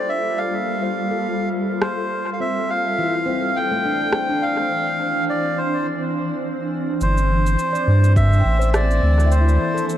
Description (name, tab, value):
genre	ambient dub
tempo	104 BPM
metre	4/4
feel	swing 57% on 16ths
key	G dorian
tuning	A4 = 440 Hz
part	melodica	melody	0.0-9.9 s	C5 to G5	-22 LUFS	right 1 dB	cassette tape, dub echo
part	granular cloud pad	sustained chords	0.0-10.0 s	E3 to C5	-25 LUFS	equal	built-in reverb
part	handpan	arpeggios	0.0-10.0 s	E3 to G5	-28 LUFS	left 3 dB	tape echo
part	electronic rim click and cabasa	drums	1.8-10.0 s	none	-27 LUFS	equal	cassette tape, dub echo
part	warm sub bass	bass	7.0-9.6 s	G1 to G2	-15 LUFS	equal	tube saturation
part	electronic kick drum	drums	8.2-8.3 s	none	-21 LUFS	equal	cassette tape
room	light reverb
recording	home recording on cassette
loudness	-17 LUFS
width	side -11 dB against mid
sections	0.0-7.0 A section; 7.0-10.0 B section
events	filter sweep on ambient pad 0.0-7.0; break 5.9-7.0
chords	0.0 Gm11; 2.4 Dm9; 7.0 Gmadd9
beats	| 0.09 0.66 1.24 1.82 | 2.39 2.97 3.55 4.12 | 4.70 5.28 5.86 6.43 | 7.01 7.59 8.16 8.74 | 9.32 9.89